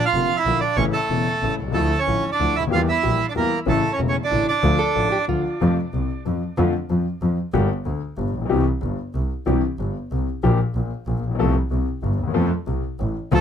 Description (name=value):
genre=tango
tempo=187 BPM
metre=3/4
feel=rubato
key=D harmonic minor, F major from 5.6 s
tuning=A4 = 439 Hz
part: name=bandoneon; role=melody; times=0.0-5.3, 13.3-13.4 s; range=A3 to F5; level=-21 LUFS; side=right 4 dB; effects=tape echo
part: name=warm concert grand piano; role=accompaniment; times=0.1-13.4 s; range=E1 to A4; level=-23 LUFS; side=left 4 dB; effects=none
part: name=clear double bass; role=bass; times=0.1-13.4 s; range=E1 to F2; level=-24 LUFS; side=right 2 dB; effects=none
part: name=hollow-body jazz guitar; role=second line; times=4.8-5.6 s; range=F4 to A4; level=-24 LUFS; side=right 1 dB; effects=none
room=light reverb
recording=close, detailed microphones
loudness=-19 LUFS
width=side -8 dB against mid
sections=0.0-5.6 A section; 5.6-13.3 B section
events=none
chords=0.0 Bb; 0.8 A; 1.8 Dmadd9; 2.7 Edim; 3.7 A; 4.6 Dm; 5.6 F; 6.6 Dm7/F; 7.5 Gm; 8.5 C; 9.5 Cadd9; 10.4 Gm7/Bb; 11.4 F/C; 11.7 C5; 12.3 F; 13.0 N.C.